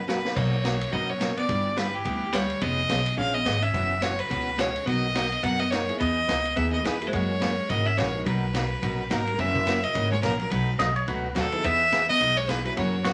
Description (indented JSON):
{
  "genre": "country, western swing",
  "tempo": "213 BPM",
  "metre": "4/4",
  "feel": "swing 59% on 8ths",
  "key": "B major",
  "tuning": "A4 = 442 Hz",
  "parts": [
    { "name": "clear fiddle", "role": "melody", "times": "0.0-13.0 s", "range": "G4 to F#5", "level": "-29 LUFS", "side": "equal", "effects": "none" },
    { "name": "hollow-body jazz guitar", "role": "second line", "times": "0.0-13.0 s", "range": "E3 to C#4", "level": "-36 LUFS", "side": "equal", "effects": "none" },
    { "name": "upright bass", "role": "bass", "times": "0.0-13.1 s", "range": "E#1 to F#2", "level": "-32 LUFS", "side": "equal", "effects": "none" },
    { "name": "picked steel-string acoustic guitar", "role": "accompaniment", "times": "0.1-13.1 s", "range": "B2 to G#4", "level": "-34 LUFS", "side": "equal", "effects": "none" },
    { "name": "vintage drum kit", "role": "drums", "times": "0.1-13.1 s", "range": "crash cymbal, hi-hat, kick drum, ride cymbal, snare drum", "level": "-35 LUFS", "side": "equal", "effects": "none" },
    { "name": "dark upright piano", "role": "accompaniment", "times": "0.2-0.4, 5.9-12.8 s", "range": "A#3 to B4", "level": "-38 LUFS", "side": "equal", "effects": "none" },
    { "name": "pedal steel guitar", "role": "second line", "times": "10.8-13.1 s", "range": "F#4 to D#5", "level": "-29 LUFS", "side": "equal", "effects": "none" }
  ],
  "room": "wet studio ambience, RT60 0.4 s",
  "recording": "none",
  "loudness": "-25 LUFS",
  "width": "mono",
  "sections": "0.4-9.4 A section; 9.4-13.1 B section",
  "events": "drum fill 0.0-0.4",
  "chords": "0.4 Bmaj7; 1.5 G6; 2.6 C#7/E#; 3.7 F#9sus4; 4.9 Bmaj7; 6.0 Emaj7; 7.1 F#9; 8.3 Bmaj7; 9.4 F#7; 10.5 B7; 11.6 Emaj7"
}